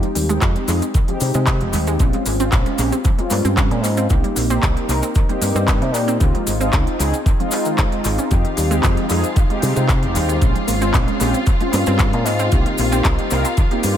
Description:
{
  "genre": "nu-disco, nu disco",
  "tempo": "114 BPM",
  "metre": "4/4",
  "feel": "straight",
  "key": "F minor",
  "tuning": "A4 = 440 Hz",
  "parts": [
    { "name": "mellow synth brass", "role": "accompaniment", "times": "0.0-14.0 s", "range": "Ab3 to Bb4", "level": "-22 LUFS", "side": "left 1 dB", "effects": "chorus, sidechain pumping, dub echo" },
    { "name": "analog pluck", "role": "arpeggios", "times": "0.0-13.9 s", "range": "Eb3 to Eb4", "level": "-27 LUFS", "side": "right 3 dB", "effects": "chorus, sidechain pumping, dub echo" },
    { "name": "pop drum kit", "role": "drums", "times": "0.0-13.9 s", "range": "handclaps, hi-hat", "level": "-26 LUFS", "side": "equal", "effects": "dub echo" },
    { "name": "fingered electric bass with an envelope filter", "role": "bass", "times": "0.2-14.0 s", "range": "F1 to C3", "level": "-20 LUFS", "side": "equal", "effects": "none" },
    { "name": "cabasa", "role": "percussion", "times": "0.2-13.9 s", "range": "none", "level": "-30 LUFS", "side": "left 3 dB", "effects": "dub echo" },
    { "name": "electronic kick drum", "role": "drums", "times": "0.4-13.7 s", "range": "none", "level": "-18 LUFS", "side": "equal", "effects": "none" },
    { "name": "muted symphonic violin section", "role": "sustained chords", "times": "8.3-14.0 s", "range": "F4 to F5", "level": "-27 LUFS", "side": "left 2 dB", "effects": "sidechain pumping" }
  ],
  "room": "light reverb",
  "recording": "echo-heavy mix",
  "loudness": "-15 LUFS",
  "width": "side -10 dB against mid",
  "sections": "0.0-14.0 A section",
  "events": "none",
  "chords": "0.0 Fm9; 2.0 Bbm9; 4.1 Cm7; 6.2 Dbmaj9; 8.3 Fm9; 10.4 Bbm9; 12.5 Cm7"
}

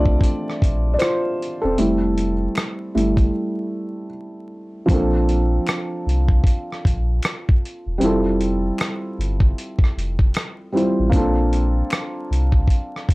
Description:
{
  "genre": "lo-fi hip hop",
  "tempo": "77 BPM",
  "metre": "4/4",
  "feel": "swing 62% on 16ths",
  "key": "Bb lydian",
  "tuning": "A4 = 439 Hz",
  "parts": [
    { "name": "felt-muted upright piano", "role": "accompaniment", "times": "0.0-13.1 s", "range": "F3 to E5", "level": "-22 LUFS", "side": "equal", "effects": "none" },
    { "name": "warm sub bass", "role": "bass", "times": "0.0-13.1 s", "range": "E1 to C2", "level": "-21 LUFS", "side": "equal", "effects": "none" },
    { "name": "dusty soul sampler-style drum kit", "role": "drums", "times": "0.1-13.1 s", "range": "hi-hat, kick drum, rim click", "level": "-18 LUFS", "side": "equal", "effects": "vintage 12-bit sampler grit" },
    { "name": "finger snaps", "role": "percussion", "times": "1.0-12.1 s", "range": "none", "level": "-38 LUFS", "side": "left 2 dB", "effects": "none" }
  ],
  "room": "light reverb",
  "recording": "dry, gritty hardware recording, vinyl crackle",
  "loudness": "-18 LUFS",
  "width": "side -22 dB against mid",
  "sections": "0.0-4.9 A section; 4.9-13.1 B section",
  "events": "felt piano solo 0.0-4.9; break 3.3-4.9",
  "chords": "0.0 Bbmaj9; 1.8 Fmaj9; 4.9 Bbmaj9; 8.0 Fmaj9; 11.1 Bbmaj9"
}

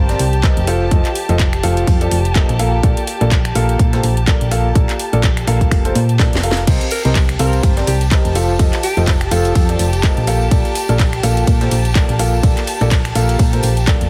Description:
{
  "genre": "piano house",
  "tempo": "125 BPM",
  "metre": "4/4",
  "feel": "swing 57% on 16ths",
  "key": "Bb major",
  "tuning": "A4 = 440 Hz",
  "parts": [
    { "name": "dark studio violin section", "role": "sustained chords", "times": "0.0-14.1 s", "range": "G4 to A5", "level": "-27 LUFS", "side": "equal", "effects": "sidechain pumping" },
    { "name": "warm concert grand piano", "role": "riff", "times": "0.0-14.0 s", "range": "F3 to F5", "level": "-23 LUFS", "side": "equal", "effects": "sidechain pumping, delay" },
    { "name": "solid FM bass", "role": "bass", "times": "0.0-14.1 s", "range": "F1 to Bb2", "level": "-19 LUFS", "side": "equal", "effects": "sidechain pumping" },
    { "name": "breakbeat sampler-style drum kit", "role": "drums", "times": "0.1-14.0 s", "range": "hi-hat, snare drum", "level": "-35 LUFS", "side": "equal", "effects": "none" },
    { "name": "house drum kit", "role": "drums", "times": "0.1-14.1 s", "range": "crash cymbal, finger snaps, handclaps, hi-hat, ride cymbal, snare drum", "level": "-26 LUFS", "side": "equal", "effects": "small room reverb" },
    { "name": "electronic kick drum", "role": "drums", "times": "0.4-14.0 s", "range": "none", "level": "-17 LUFS", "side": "equal", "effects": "small room reverb" },
    { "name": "tambourine", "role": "percussion", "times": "6.7-14.1 s", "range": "none", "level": "-34 LUFS", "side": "equal", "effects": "none" },
    { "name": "growling alto saxophone", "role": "melody", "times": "6.9-9.7 s", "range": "G4 to Bb4", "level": "-27 LUFS", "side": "equal", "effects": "delay" }
  ],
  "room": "small room ambience",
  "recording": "heavily compressed radio sound, multiband compression",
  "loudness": "-15 LUFS",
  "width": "mono",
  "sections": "0.0-14.1 A section",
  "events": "drum fill 6.2-6.7",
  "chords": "0.0 F7; 2.6 Bbmaj7; 6.7 F7; 10.3 Bbmaj7"
}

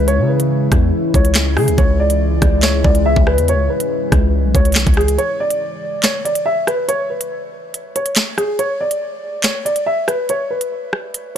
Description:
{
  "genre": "hip hop, drill",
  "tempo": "141 BPM",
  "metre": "4/4",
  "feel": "half-time",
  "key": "C# phrygian",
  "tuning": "A4 = 440 Hz",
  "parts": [
    { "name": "dark grand piano", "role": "melody", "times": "0.0-11.4 s", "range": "G#4 to E5", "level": "-19 LUFS", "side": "equal", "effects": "low-pass filter, digital delay" },
    { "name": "deep dark ambient pad", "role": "sustained chords", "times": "0.0-5.2 s", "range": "C#3 to E4", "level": "-22 LUFS", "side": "left 2 dB", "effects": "chorus, built-in reverb" },
    { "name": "distorted 808-style bass", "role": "bass", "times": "0.0-5.2 s", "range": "B1 to C#3", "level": "-16 LUFS", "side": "equal", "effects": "distortion" },
    { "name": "drill drum kit", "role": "drums", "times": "0.1-11.2 s", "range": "handclaps, hi-hat, kick drum, rim click, snare drum", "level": "-16 LUFS", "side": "equal", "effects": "none" }
  ],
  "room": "digital ambience",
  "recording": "none",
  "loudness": "-14 LUFS",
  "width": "side -9 dB against mid",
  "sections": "0.0-5.2 A section; 5.2-11.4 B section",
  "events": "break 5.2-11.4",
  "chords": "0.0 C#m; 5.2 N.C."
}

